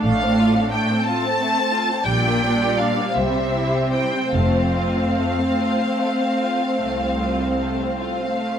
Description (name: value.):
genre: classical, slow romantic movement for string orchestra.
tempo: 47-60 BPM (dotted quarters).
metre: 12/8.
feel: rubato.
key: F major.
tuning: A4 = 442 Hz.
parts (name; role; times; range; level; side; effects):
rich studio violin section; melody; 0.0-8.6 s; E5 to A5; -24 LUFS; left 1 dB; none.
rich symphonic violin section; second line; 0.0-8.6 s; G3 to D5; -25 LUFS; equal; none.
clear symphonic viola section; accompaniment; 0.0-8.6 s; G3 to D4; -23 LUFS; equal; none.
rich symphonic cello section; bass; 0.0-7.8 s; C2 to C3; -24 LUFS; right 2 dB; none.
warm chamber double bass section; bass; 0.0-5.1 s; F1 to C2; -25 LUFS; right 1 dB; none.
room: moderate large studio reverb, RT60 1.2 s.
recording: none.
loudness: -18 LUFS.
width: side -8 dB against mid.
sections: 0.0-8.6 A section.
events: none.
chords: 0.0 F/A; 2.1 Gm/Bb; 3.1 C; 4.3 F.